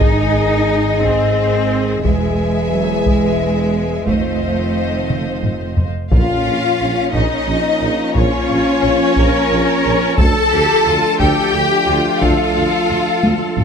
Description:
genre	cinematic, epic orchestral film score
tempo	59 BPM (dotted quarters)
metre	6/8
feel	straight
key	unclear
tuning	A4 = 441 Hz
part	rich symphonic violin section	melody	0.0-13.6 s	Db5 to A5	-22 LUFS	left 5 dB	none
part	warm symphonic violin section	second line	0.0-13.6 s	Db4 to E5	-22 LUFS	left 4 dB	none
part	rich symphonic viola section	accompaniment	0.0-13.6 s	Db4 to C5	-23 LUFS	right 1 dB	none
part	dark trombone section	sustained chords	0.0-13.6 s	Eb3 to C4	-24 LUFS	right 4 dB	none
part	mellow French horn section	sustained chords	0.0-13.6 s	Db4 to Eb5	-23 LUFS	left 6 dB	none
part	rich symphonic cello section	bass	0.0-13.6 s	Gb3 to Bb4	-21 LUFS	right 2 dB	none
part	rich symphonic double bass section	bass	0.0-13.6 s	E1 to D2	-23 LUFS	right 3 dB	none
part	taiko ensemble	drums	0.0-13.6 s	none	-18 LUFS	equal	none
part	warm tuba	bass	6.1-13.6 s	Bb1 to D2	-24 LUFS	right 4 dB	none
part	timpani	percussion	6.1-7.1 s	Bb2	-26 LUFS	equal	none
room	light reverb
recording	close, detailed microphones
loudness	-13 LUFS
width	side -6 dB against mid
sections	0.0-6.1 A section; 6.1-13.6 B section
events	drum fill 5.1-6.1, 13.2-13.6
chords	0.0 Ab; 2.1 E; 4.1 F7; 6.1 Bbm; 10.2 Dm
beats	| 0.01 1.03 | 2.05 3.07 | 4.09 5.11 | 6.12 7.14 | 8.16 9.17 | 10.19 11.20 | 12.22 13.23

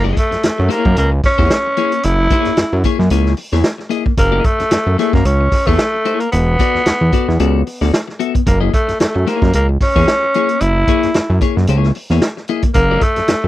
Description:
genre	funk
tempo	112 BPM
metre	4/4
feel	swing 56% on 16ths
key	F# mixolydian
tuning	A4 = 439 Hz
part	breathy tenor saxophone	melody	0.0-13.5 s	A3 to E4	-16 LUFS	equal	none
part	clean electric guitar	accompaniment	0.0-13.5 s	A#3 to E5	-20 LUFS	left 10 dB	wide subtle chorus
part	fat analog bass	bass	0.0-13.5 s	E1 to F#2	-14 LUFS	equal	none
part	vintage drum kit	drums	0.2-13.4 s	hi-hat, kick drum, snare drum	-17 LUFS	equal	none
room	little or no reverb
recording	dry, close 1970s-style studio recording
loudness	-12 LUFS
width	side -15 dB against mid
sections	0.0-13.5 A section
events	none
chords	0.0 F#9; 6.3 E9sus4; 8.5 F#9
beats	0.44 0.97 1.51 | 2.04 2.58 3.11 3.64 | 4.18 4.71 5.25 5.78 | 6.32 6.86 7.39 7.93 | 8.46 9.00 9.54 10.07 | 10.61 11.14 11.68 12.21 | 12.75 13.28

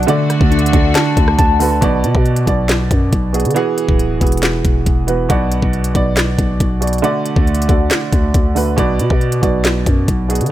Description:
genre	hip hop, trap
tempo	138 BPM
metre	4/4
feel	half-time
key	B dorian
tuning	A4 = 440 Hz
part	dark baby grand piano	accompaniment	0.0-10.5 s	B2 to D5	-18 LUFS	right 4 dB	none
part	clear studio string section	sustained chords	0.0-1.8 s	D3 to F#4	-24 LUFS	left 3 dB	none
part	mellow tine electric piano	arpeggios	0.0-1.8 s	D3 to A5	-17 LUFS	left 1 dB	medium stereo tremolo, ping-pong delay
part	growling 808-style bass	bass	0.0-10.5 s	D1 to D3	-17 LUFS	equal	none
part	trap drum kit	drums	0.0-10.5 s	handclaps, hi-hat, kick drum, rim click, snare drum	-16 LUFS	equal	none
room	little or no reverb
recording	none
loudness	-12 LUFS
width	side -13 dB against mid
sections	0.0-1.8 A section; 1.8-10.5 B section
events	none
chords	0.1 D; 1.8 Bm; 3.6 Eadd9; 5.3 Bm; 7.0 D; 8.8 Bm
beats	| 0.08 0.52 0.95 1.39 | 1.82 2.26 2.69 3.12 | 3.56 4.00 4.43 4.86 | 5.30 5.73 6.17 6.60 | 7.04 7.47 7.91 8.34 | 8.78 9.21 9.65 10.08

